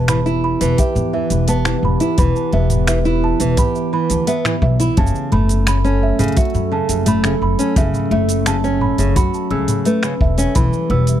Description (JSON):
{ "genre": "folktronica", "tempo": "86 BPM", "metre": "4/4", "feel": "straight", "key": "E dorian", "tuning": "A4 = 440 Hz", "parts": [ { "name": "music box", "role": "second line", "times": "0.0-11.1 s", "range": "B4 to E6", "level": "-24 LUFS", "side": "right 5 dB", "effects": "tape echo" }, { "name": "warbly tape-like pad", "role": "sustained chords", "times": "0.0-11.2 s", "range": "E3 to B4", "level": "-23 LUFS", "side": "right 2 dB", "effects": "chorus, built-in reverb" }, { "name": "nylon-string guitar", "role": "arpeggios", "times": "0.0-11.2 s", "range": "C#3 to G4", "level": "-20 LUFS", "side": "left 1 dB", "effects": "tape echo" }, { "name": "upright bass", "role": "bass", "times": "0.0-11.2 s", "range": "E1 to F#2", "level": "-18 LUFS", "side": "equal", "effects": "none" }, { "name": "organic electronic drum kit", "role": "drums", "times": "0.1-11.2 s", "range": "finger snaps, hi-hat, shaker, toms", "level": "-23 LUFS", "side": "right 1 dB", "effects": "none" }, { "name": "kick drum", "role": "drums", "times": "0.8-10.7 s", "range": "none", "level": "-17 LUFS", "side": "equal", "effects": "none" } ], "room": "studio reverb", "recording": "dry, close 1970s-style studio recording", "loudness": "-14 LUFS", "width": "side -11 dB against mid", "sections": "0.0-11.2 A section", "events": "none", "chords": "0.0 Em; 5.0 F#m; 10.6 Em" }